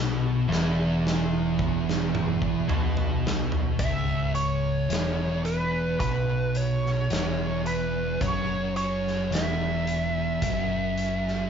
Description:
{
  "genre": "stoner and doom metal",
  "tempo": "54 BPM",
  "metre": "4/4",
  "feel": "straight",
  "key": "C# minor from 3.8 s",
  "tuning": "A4 = 441 Hz",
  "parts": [
    { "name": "cranked stack guitar", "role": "riff", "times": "0.0-3.8 s", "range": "E2 to B2", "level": "-30 LUFS", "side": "right 1 dB", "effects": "overdrive" },
    { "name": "thick fuzz guitar", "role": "riff", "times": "0.0-11.5 s", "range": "C#2 to B2", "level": "-30 LUFS", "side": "left 9 dB", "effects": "distortion" },
    { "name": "thick fuzz guitar", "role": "riff", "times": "0.0-11.5 s", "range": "C#2 to B2", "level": "-30 LUFS", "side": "right 8 dB", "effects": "distortion" },
    { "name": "growling picked electric bass", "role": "bass", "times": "0.0-11.5 s", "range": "C#1 to B1", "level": "-32 LUFS", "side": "equal", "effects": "overdrive" },
    { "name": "big rock drum kit", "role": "drums", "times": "0.5-11.4 s", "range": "hi-hat, kick drum, snare drum, toms", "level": "-31 LUFS", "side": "equal", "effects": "none" },
    { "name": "fuzz lead guitar", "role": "melody", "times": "3.8-11.5 s", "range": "B4 to E5", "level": "-29 LUFS", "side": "right 1 dB", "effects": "wah, distortion" }
  ],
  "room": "moderate large studio reverb, RT60 0.8 s",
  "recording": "band playing live in one room, nothing above 7.6 kHz",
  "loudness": "-24 LUFS",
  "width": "side -7 dB against mid",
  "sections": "0.0-3.8 A section; 3.8-11.5 B section",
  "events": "drum fill 0.0-3.8",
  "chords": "0.0 N.C.; 3.8 C#m"
}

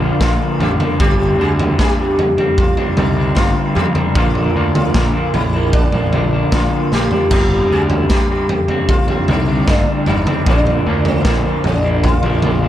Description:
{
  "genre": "psychedelic rock",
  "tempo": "76 BPM",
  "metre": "4/4",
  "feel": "straight",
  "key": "unclear",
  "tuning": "A4 = 440 Hz",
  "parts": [
    { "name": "sitar", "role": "melody", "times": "0.0-12.7 s", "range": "C4 to Ab4", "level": "-20 LUFS", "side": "left 1 dB", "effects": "dub echo" },
    { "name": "electric guitar through a small old amp", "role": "riff", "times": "0.0-12.7 s", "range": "G2 to D4", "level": "-20 LUFS", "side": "equal", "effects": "tremolo, dub echo" },
    { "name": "fuzz picked electric bass", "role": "bass", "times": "0.0-12.7 s", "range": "G1 to F2", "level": "-19 LUFS", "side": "equal", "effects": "overdrive" },
    { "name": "raw garage drum kit", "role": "drums", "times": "0.2-12.6 s", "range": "kick drum, snare drum, splash cymbal, toms", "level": "-16 LUFS", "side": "equal", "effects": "none" }
  ],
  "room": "little or no reverb",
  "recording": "echo-heavy mix",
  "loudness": "-13 LUFS",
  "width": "side -12 dB against mid",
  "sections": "0.0-12.7 A section",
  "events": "drum fill 6.9-7.3",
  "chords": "0.0 Bb; 1.0 Gsus4; 4.2 Bb; 7.3 Gsus4; 10.5 Bb"
}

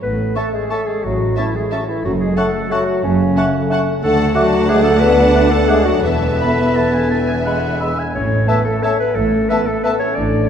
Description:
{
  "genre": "classical, orchestral ballroom waltz",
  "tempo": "161-196 BPM",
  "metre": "3/4",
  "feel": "rubato",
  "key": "A major",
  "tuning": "A4 = 440 Hz",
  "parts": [
    { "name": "warm clarinet", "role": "second line", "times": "0.0-10.5 s", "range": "C#4 to D5", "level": "-20 LUFS", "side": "equal", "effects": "none" },
    { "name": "mellow French horn section", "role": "sustained chords", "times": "0.0-10.5 s", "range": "C#3 to D4", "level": "-22 LUFS", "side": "left 1 dB", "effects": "none" },
    { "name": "concert harp", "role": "arpeggios", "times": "0.0-10.5 s", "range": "F#2 to B4", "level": "-24 LUFS", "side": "left 4 dB", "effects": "none" },
    { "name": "rich symphonic cello section", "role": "bass", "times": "0.0-10.4 s", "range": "D2 to A2", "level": "-22 LUFS", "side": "right 2 dB", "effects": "none" },
    { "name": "rich symphonic double bass section", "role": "bass", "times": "0.0-10.4 s", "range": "E1 to D2", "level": "-22 LUFS", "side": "right 2 dB", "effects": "none" },
    { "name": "warm symphonic violin section", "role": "melody", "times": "0.4-9.9 s", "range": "G#5 to A5", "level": "-31 LUFS", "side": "left 3 dB", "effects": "none" },
    { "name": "clear oboe", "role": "second line", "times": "0.4-10.0 s", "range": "E5 to B5", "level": "-27 LUFS", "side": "right 1 dB", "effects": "none" },
    { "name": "small flute group", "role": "second line", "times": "0.4-9.9 s", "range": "A5 to D6", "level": "-28 LUFS", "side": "left 2 dB", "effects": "none" },
    { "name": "warm symphonic violin section", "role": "second line", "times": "0.4-9.9 s", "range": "E5 to F#5", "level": "-27 LUFS", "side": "left 1 dB", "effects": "none" },
    { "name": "dark symphonic viola section", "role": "accompaniment", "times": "0.4-9.9 s", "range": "A3 to D4", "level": "-26 LUFS", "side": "equal", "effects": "none" },
    { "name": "mellow bassoon", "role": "accompaniment", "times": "0.4-10.0 s", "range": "G#3 to A3", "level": "-25 LUFS", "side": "right 1 dB", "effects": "none" }
  ],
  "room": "wet scoring stage reverb, RT60 1.9 s",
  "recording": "heard from further back in the room",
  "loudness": "-14 LUFS",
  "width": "side -8 dB against mid",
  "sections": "0.0-10.5 A section",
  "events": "none",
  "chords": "0.0 A; 2.0 F#m; 4.0 D; 6.0 Esus4; 7.1 E; 8.1 A"
}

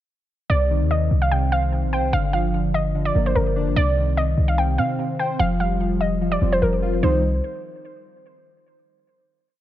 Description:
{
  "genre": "hip hop, trap",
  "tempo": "147 BPM",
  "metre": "4/4",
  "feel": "half-time",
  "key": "C minor",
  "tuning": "A4 = 441 Hz",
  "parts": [
    { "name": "warbly dusty pluck", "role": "melody", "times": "0.5-7.2 s", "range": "Bb4 to G5", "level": "-24 LUFS", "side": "equal", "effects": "chorus, low-pass filter, tape echo" },
    { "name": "warbly lo-fi synth keys", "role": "accompaniment", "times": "0.5-7.2 s", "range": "C3 to C5", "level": "-24 LUFS", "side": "equal", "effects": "chorus, low-pass filter" },
    { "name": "clean 808-style bass", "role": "bass", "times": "0.5-7.4 s", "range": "F1 to C3", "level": "-21 LUFS", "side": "equal", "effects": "none" }
  ],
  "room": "little or no reverb",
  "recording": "none",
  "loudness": "-18 LUFS",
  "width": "side -13 dB against mid",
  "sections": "0.5-7.0 hook; 7.0-8.7 final chord",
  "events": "none",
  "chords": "0.5 Cm; 2.1 Gm7; 3.8 Cm; 5.4 Fsus2; 7.0 Cm"
}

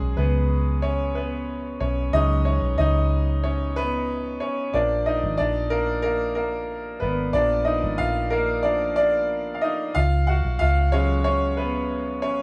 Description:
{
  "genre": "piano-driven pop",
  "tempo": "92 BPM",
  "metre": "4/4",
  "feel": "straight",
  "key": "unclear",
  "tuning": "A4 = 440 Hz",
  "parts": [
    { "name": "bright upright piano", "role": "accompaniment", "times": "0.0-12.4 s", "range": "E#3 to F#5", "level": "-25 LUFS", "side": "equal", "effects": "none" },
    { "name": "vintage muted fingered electric bass", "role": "bass", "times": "0.0-12.4 s", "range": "G#1 to C#2", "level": "-26 LUFS", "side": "equal", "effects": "none" }
  ],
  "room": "wet studio reverb, RT60 0.6 s",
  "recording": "band playing live in one room",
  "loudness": "-23 LUFS",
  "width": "mono",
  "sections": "0.0-12.4 A section",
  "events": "upright piano solo 0.0-12.4",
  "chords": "0.0 C#sus4; 4.7 A#; 10.0 C#sus4"
}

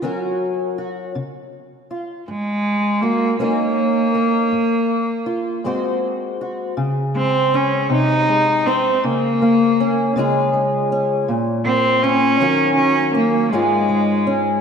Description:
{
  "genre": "folk",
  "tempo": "53 BPM (dotted quarters)",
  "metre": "6/8",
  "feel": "straight",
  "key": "Db major",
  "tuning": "A4 = 436 Hz",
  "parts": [
    { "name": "fingerpicked acoustic archtop guitar", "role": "accompaniment", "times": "0.0-14.6 s", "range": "Ab2 to C5", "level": "-20 LUFS", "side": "left 1 dB", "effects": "analog chorus" },
    { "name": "rich cello", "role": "melody", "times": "2.3-14.6 s", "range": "Ab3 to Eb4", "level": "-17 LUFS", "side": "right 1 dB", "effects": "ping-pong delay" }
  ],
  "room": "wet lush hall reverb, RT60 2.6 s",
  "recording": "dreamy mix soaked in reverb",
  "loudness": "-16 LUFS",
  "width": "side -6 dB against mid",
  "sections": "0.0-6.8 A section; 6.8-14.6 B section",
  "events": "none",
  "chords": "0.0 Ebm7; 1.1 Db; 2.3 Gbadd9/Ab; 3.4 Gb6; 4.5 Fmadd11/Ab; 5.6 Ab7; 6.8 Db5; 7.9 Ab/C; 9.0 Bbm/Db; 10.2 Db; 11.3 Bbm; 12.4 Ebm7; 13.5 Db/Ab"
}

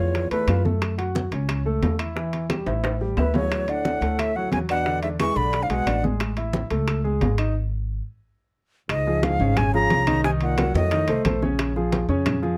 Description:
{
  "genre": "Afro-Cuban jazz",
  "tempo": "178 BPM",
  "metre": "4/4",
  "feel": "straight",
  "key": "A major, Db major from 8.9 s",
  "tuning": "A4 = 440 Hz",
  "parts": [
    { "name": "breathy bright concert flute", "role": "melody", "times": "0.0-0.6, 3.2-6.0, 8.9-11.2 s", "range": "B4 to C#6", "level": "-27 LUFS", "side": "equal", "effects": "none" },
    { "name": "warm trombone", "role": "second line", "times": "0.0-0.6, 3.2-6.0, 8.9-11.2 s", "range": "E2 to E3", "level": "-34 LUFS", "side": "equal", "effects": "none" },
    { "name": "warm concert grand piano", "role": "accompaniment", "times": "0.0-12.6 s", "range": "Db3 to F#5", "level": "-29 LUFS", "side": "equal", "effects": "none" },
    { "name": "upright bass", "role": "bass", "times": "0.0-12.6 s", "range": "G#1 to F#2", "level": "-28 LUFS", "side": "equal", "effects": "none" },
    { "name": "bongos", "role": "percussion", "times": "0.1-12.6 s", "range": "none", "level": "-36 LUFS", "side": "equal", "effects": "none" },
    { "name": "timbales", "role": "percussion", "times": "0.1-12.4 s", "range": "none", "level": "-34 LUFS", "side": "equal", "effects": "none" },
    { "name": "congas", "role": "percussion", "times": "0.2-12.6 s", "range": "none", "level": "-32 LUFS", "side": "equal", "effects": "none" },
    { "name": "claves", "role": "percussion", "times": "0.5-12.4 s", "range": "none", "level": "-42 LUFS", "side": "equal", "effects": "none" }
  ],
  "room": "little or no reverb",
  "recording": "close, detailed microphones",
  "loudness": "-23 LUFS",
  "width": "mono",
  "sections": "0.0-8.9 A section; 8.9-12.6 B section",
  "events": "drum fill 2.7-3.5; stop 7.6-8.9",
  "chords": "0.0 C#7alt; 0.8 F#m7; 2.2 Em; 2.8 A5; 3.5 Dadd9; 4.9 E9; 6.2 Amaj7; 7.6 N.C.; 8.9 Db69; 10.2 Cm7b5; 10.9 F7; 11.6 Bbm7"
}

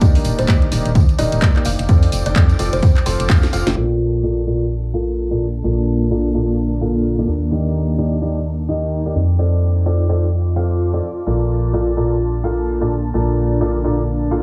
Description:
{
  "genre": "piano house",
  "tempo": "128 BPM",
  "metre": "4/4",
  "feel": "swing 59% on 16ths",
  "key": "Bb major",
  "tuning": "A4 = 440 Hz",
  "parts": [
    { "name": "clear baby grand piano", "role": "riff", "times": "0.0-14.4 s", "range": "Bb2 to F5", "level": "-24 LUFS", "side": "equal", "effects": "sidechain pumping, low-pass filter, tape echo" },
    { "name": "organ-like FM bass", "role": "bass", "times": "0.0-14.4 s", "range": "Eb1 to F2", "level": "-21 LUFS", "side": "equal", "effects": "tube saturation, sidechain pumping" },
    { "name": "electronic kick drum", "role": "drums", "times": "0.0-3.4 s", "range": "none", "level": "-16 LUFS", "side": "equal", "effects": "studio reverb" },
    { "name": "garage drum kit", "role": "drums", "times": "0.0-3.9 s", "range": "crash cymbal, handclaps, hi-hat, snare drum", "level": "-27 LUFS", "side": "equal", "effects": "studio reverb" },
    { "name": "tambourine", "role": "percussion", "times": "0.0-3.7 s", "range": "none", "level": "-37 LUFS", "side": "equal", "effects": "none" },
    { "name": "granular cloud pad", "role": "texture", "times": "0.0-14.4 s", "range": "Bb3 to D6", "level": "-27 LUFS", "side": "equal", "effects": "built-in reverb, sidechain pumping" },
    { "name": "buzzing kalimba", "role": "melody", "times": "0.4-3.2 s", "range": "C5 to F5", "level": "-30 LUFS", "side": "equal", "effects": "tape echo" }
  ],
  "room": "light reverb",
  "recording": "low-pass filter, small room reverb",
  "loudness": "-17 LUFS",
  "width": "mono",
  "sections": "0.0-3.8 A section; 3.8-14.4 B section",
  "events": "drum fill 3.3-3.8; filter sweep 3.8-14.4",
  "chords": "0.0 Ebmaj7; 1.7 F6; 3.8 Bbmaj7; 7.3 Ebmaj7; 9.2 F6; 11.3 Bbmaj7"
}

